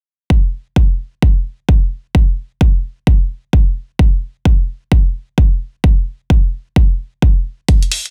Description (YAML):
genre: bass house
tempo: 130 BPM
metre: 4/4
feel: swing 60% on 16ths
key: none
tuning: none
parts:
  - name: electronic kick drum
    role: drums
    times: 0.3-7.8 s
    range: none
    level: -14 LUFS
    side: equal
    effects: none
  - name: electronic hi-hat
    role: drums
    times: 7.7-8.1 s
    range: none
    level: -20 LUFS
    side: equal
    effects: none
room: little or no reverb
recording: dense, heavily limited modern master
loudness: -15 LUFS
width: mono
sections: 0.3-8.1 A section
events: none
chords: none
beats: | 0.30 0.76 1.22 1.69 | 2.15 2.61 3.07 3.53 | 3.99 4.46 4.92 5.38 | 5.84 6.30 6.76 7.22 | 7.68